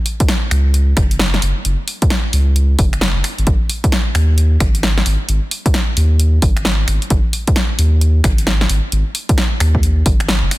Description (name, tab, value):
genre	UK garage, two-step garage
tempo	132 BPM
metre	4/4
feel	swing 63% on 16ths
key	unclear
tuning	A4 = 440 Hz
part	punchy analog drum machine	drums	0.1-10.6 s	finger snaps, hi-hat, snare drum	-20 LUFS	equal	studio ambience
part	electronic kick drum	drums	0.2-10.2 s	none	-16 LUFS	equal	studio ambience
part	saturated sub bass	bass	0.5-10.5 s	F#1 to D#2	-14 LUFS	equal	none
room	little or no reverb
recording	dense, heavily limited modern master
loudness	-13 LUFS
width	side -18 dB against mid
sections	0.0-10.6 A section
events	none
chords	none